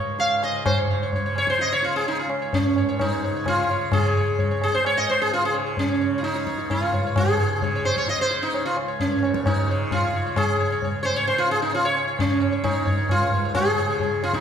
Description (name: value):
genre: indian classical, Hindustani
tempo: 130 BPM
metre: 7/4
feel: straight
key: Db raga hamsadhwani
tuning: A4 = 440 Hz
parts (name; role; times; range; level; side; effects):
- sitar; melody; 0.0-14.4 s; Db4 to F5; -22 LUFS; equal; none
- tanpura; drone; 0.0-14.4 s; Db2 to Db3; -31 LUFS; right 1 dB; none
- tabla; percussion; 0.2-14.4 s; none; -25 LUFS; equal; none
room: wet recital hall reverb, RT60 1.4 s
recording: recorded in a church or concert hall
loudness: -20 LUFS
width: side -8 dB against mid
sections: 0.7-14.4 A section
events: speeding up 0.0-14.4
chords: none